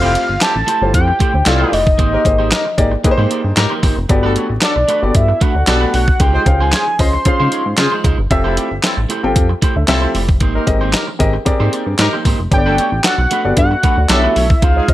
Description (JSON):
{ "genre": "early-eighties boogie funk", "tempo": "114 BPM", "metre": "4/4", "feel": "straight", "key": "unclear", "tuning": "A4 = 442 Hz", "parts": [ { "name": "fat analog lead", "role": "melody", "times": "0.0-8.0, 12.5-14.9 s", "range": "D5 to C6", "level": "-17 LUFS", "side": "equal", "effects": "chorus" }, { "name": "warm horn section", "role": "second line", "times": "0.0-14.9 s", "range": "C4 to C5", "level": "-22 LUFS", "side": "left 1 dB", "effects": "none" }, { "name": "dark baby grand piano", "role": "accompaniment", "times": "0.0-14.9 s", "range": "A3 to G5", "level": "-19 LUFS", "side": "left 2 dB", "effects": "none" }, { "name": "electric guitar at the edge of break-up", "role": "riff", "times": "0.0-14.9 s", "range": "Ab3 to D5", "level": "-23 LUFS", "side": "right 5 dB", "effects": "wide subtle chorus" }, { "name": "chorused synth bass", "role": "bass", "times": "0.0-14.9 s", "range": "F1 to Db3", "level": "-17 LUFS", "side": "equal", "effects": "none" }, { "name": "clean 12-bit digital drum machine", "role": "drums", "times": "0.2-14.9 s", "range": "handclaps, hi-hat, kick drum, snare drum", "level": "-16 LUFS", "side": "equal", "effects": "none" } ], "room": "light reverb", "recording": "none", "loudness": "-12 LUFS", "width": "side -14 dB against mid", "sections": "0.0-14.9 A section", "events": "none", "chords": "0.0 Fmaj9; 2.0 Abmaj9; 4.1 Gmaj9; 6.2 Dbmaj9; 8.3 Fmaj9; 10.4 Abmaj9; 12.5 Gmaj9" }